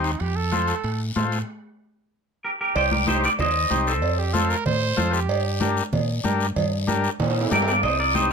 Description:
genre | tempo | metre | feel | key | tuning
latin, cumbia | 189 BPM | 4/4 | straight | G minor | A4 = 440 Hz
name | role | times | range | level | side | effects
bright trumpet | second line | 0.0-1.0, 4.2-5.8 s | Eb4 to C5 | -28 LUFS | right 7 dB | none
overdriven combo organ | accompaniment | 0.0-8.3 s | D4 to C5 | -25 LUFS | left 5 dB | none
fingered electric bass | bass | 0.0-8.3 s | C2 to Bb2 | -26 LUFS | equal | none
guiro | percussion | 0.0-8.3 s | none | -35 LUFS | left 6 dB | none
timbales and cowbell | percussion | 0.0-8.3 s | none | -29 LUFS | right 4 dB | none
congas | percussion | 0.5-8.3 s | none | -29 LUFS | equal | none
clean electric guitar | melody | 2.4-4.2, 7.5-8.3 s | G4 to Eb5 | -23 LUFS | right 1 dB | spring reverb
room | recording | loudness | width
light reverb | close, detailed microphones | -20 LUFS | side -6 dB against mid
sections
0.0-2.8 A section; 2.8-8.3 B section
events
stop 1.5-2.8; drum fill 7.2-7.8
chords
0.2 F; 1.5 N.C.; 2.8 Cm; 4.0 F; 5.3 Gm

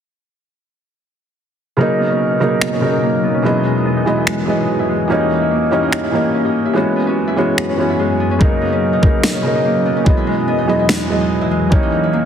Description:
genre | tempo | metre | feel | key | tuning
future bass | 145 BPM | 4/4 | half-time | B major | A4 = 439 Hz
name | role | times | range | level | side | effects
felt-muted upright piano | accompaniment | 1.8-12.3 s | C#3 to D#5 | -16 LUFS | right 1 dB | sidechain pumping, digital delay
ethereal airy pad | sustained chords | 2.1-12.3 s | E2 to D#5 | -21 LUFS | left 2 dB | ensemble chorus, built-in reverb, phaser, sidechain pumping
Celtic harp | arpeggios | 1.8-12.3 s | G#3 to E4 | -20 LUFS | left 1 dB | sidechain pumping, low-pass filter, digital delay
electronic finger snaps and snare drum | drums | 2.6-11.0 s | none | -20 LUFS | equal | none
electronic kick drum | drums | 8.4-11.8 s | none | -13 LUFS | equal | overdrive
room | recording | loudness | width
moderate lush hall reverb, RT60 1.8 s, small room reverb | heavily compressed radio sound, multiband compression | -13 LUFS | side -8 dB against mid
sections
1.8-12.3 A section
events
filter sweep on harp 1.8-12.3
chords
1.8 Bmaj9; 3.4 Emaj9; 5.1 D#7b9; 6.8 F#9sus4; 8.4 Bmaj9; 10.1 Emaj9; 11.7 D#7b9

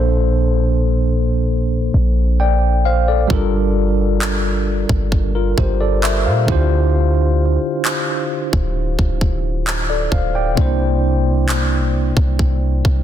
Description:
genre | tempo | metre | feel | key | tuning
contemporary R&B | 66 BPM | 4/4 | straight | G dorian | A4 = 441 Hz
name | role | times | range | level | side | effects
tine electric piano | accompaniment | 0.0-13.0 s | Bb2 to G5 | -19 LUFS | equal | medium stereo tremolo
warm 808-style bass | bass | 0.0-13.0 s | D1 to Bb2 | -17 LUFS | equal | none
organic electronic drum kit | drums | 3.3-13.0 s | handclaps, kick drum | -20 LUFS | equal | none
room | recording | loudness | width
little or no reverb | dense, heavily limited modern master | -14 LUFS | side -10 dB against mid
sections
0.0-13.0 A section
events
none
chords
0.0 Bbmaj7; 3.3 Gm7; 6.5 Dm11; 10.6 C7

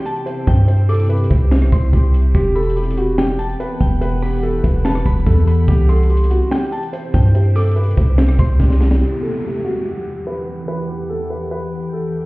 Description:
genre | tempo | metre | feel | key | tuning
hip hop, trap | 144 BPM | 4/4 | half-time | E minor | A4 = 440 Hz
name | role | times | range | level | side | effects
dark grand piano | melody | 0.0-12.3 s | F#4 to C5 | -24 LUFS | right 1 dB | low-pass filter, tape echo
glassy synth bell | second line | 0.0-8.6 s | G5 to D6 | -30 LUFS | left 1 dB | chorus, tremolo, tape echo
ethereal airy pad | sustained chords | 0.0-12.3 s | E2 to F#5 | -25 LUFS | left 1 dB | ensemble chorus, built-in reverb, phaser, low-pass filter
compact cocktail drum kit | drums | 0.1-9.0 s | finger snaps, hi-hat, kick drum, rim click, snare drum | -17 LUFS | equal | vintage 12-bit sampler grit
hard-hitting 808-style bass | bass | 0.5-9.0 s | E1 to G2 | -14 LUFS | equal | none
downlifter | sound effects | 9.0-12.3 s | none | -30 LUFS | left 1 dB | none
room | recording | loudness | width
little or no reverb | heard muffled through a wall, stone room reverb, EQ | -14 LUFS | side -21 dB against mid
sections
0.0-9.0 A section; 9.0-12.3 B section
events
drum fill 8.6-9.0; filter sweep 9.0-12.3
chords
0.0 C; 2.3 Emadd9; 5.7 C; 9.0 Emadd9

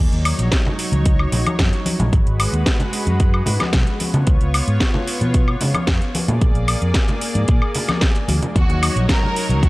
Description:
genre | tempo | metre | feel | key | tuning
nu-disco, nu disco | 112 BPM | 4/4 | straight | Eb minor | A4 = 441 Hz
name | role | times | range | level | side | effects
lush unison pad | sustained chords | 0.0-9.7 s | Gb3 to D5 | -25 LUFS | equal | chorus, sidechain pumping
fingered electric bass | bass | 0.0-9.7 s | Ab1 to Db3 | -19 LUFS | equal | tube saturation
house drum kit | drums | 0.1-9.7 s | hi-hat, snare drum, woodblock | -23 LUFS | equal | none
electronic kick drum | drums | 0.5-9.7 s | none | -17 LUFS | equal | none
congas | percussion | 0.7-9.7 s | none | -26 LUFS | left 1 dB | none
bright studio violin section | melody | 8.6-9.7 s | Gb4 to Bb4 | -24 LUFS | right 1 dB | analog delay
room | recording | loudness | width
digital ambience | dry, gritty hardware recording, cassette tape | -16 LUFS | side -20 dB against mid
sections
0.0-9.7 A section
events
none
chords
0.0 Ebm7; 2.1 Abm7; 4.0 Db7; 6.1 Bb7; 8.6 Ebm7

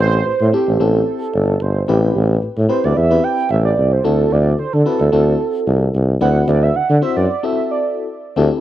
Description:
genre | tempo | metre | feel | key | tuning
early-eighties boogie funk | 111 BPM | 4/4 | straight | unclear | A4 = 440 Hz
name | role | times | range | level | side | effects
warm velvety synth lead | melody | 0.0-8.6 s | G4 to G5 | -20 LUFS | right 6 dB | chorus, cassette tape
FM electric piano with tremolo | accompaniment | 0.0-8.6 s | C4 to C5 | -22 LUFS | left 7 dB | cassette tape
clear tuba | bass | 0.0-8.5 s | G1 to D3 | -15 LUFS | equal | none
room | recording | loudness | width
little or no reverb | home recording on cassette | -14 LUFS | side -13 dB against mid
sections
0.0-8.4 A section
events
soft synth lead solo 0.0-8.4; break 7.3-8.4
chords
0.0 Am7; 4.0 D9

